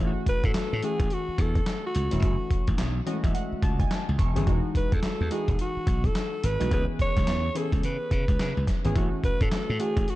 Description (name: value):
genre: R&B, new jack swing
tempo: 107 BPM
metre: 4/4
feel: swing 61% on 16ths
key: unclear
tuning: A4 = 435 Hz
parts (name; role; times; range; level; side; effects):
- warm analog keys; accompaniment; 0.0-10.2 s; D#3 to C#6; -32 LUFS; left 1 dB; chorus
- glassy slap bass; bass; 0.0-10.0 s; E1 to C#3; -28 LUFS; equal; none
- raspy alto saxophone; melody; 0.3-10.2 s; F#4 to C#5; -31 LUFS; equal; none
- dusty soul sampler-style drum kit; drums; 0.3-10.2 s; handclaps, hi-hat, kick drum, snare drum; -26 LUFS; equal; overdrive
room: digital ambience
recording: dark, warm production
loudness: -24 LUFS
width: side -16 dB against mid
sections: 0.0-10.2 A section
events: synth keys fill 2.8-4.5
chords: 0.0 A6; 2.2 F#m7; 4.5 Emaj9; 6.7 C#m7; 9.0 A6